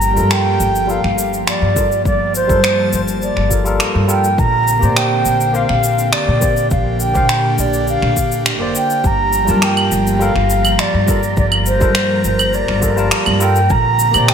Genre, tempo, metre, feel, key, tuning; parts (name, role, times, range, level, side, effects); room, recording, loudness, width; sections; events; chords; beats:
sunset chillout; 103 BPM; 4/4; straight; G minor; A4 = 438 Hz
baroque flute; melody; 0.0-14.3 s; C5 to Bb5; -17 LUFS; right 1 dB; digital delay
airy breathy pad; sustained chords; 0.0-14.3 s; D3 to A5; -22 LUFS; right 1 dB; chorus
upright bass; bass; 0.0-14.3 s; F1 to Bb2; -18 LUFS; equal
electronic shaker, finger snaps and claves; drums; 0.0-14.3 s; -20 LUFS; equal; overdrive, gated reverb
barky tine electric piano; accompaniment; 0.1-14.3 s; G3 to A5; -23 LUFS; moving between left 3 dB and right 3 dB; auto-pan, low-pass filter, digital delay
electronic kick drum; drums; 1.8-13.8 s; -19 LUFS; equal; overdrive
wind-like tuned noise texture; texture; 9.6-14.3 s; Bb5; -28 LUFS; right 2 dB; built-in reverb
moderate plate reverb, RT60 2.7 s; bright 1980s-style digital production; -12 LUFS; side -7 dB against mid
0.0-14.3 A section
filter sweep on tine electric piano 0.0-14.3
0.0 Gm9; 4.4 Bb69; 9.0 Gm9; 13.7 Bb69
0.31 0.89 1.47 | 2.05 2.64 3.22 3.80 | 4.38 4.97 5.55 6.13 | 6.71 7.30 7.88 8.46 | 9.04 9.63 10.21 10.79 | 11.38 11.96 12.54 13.12 | 13.71 14.29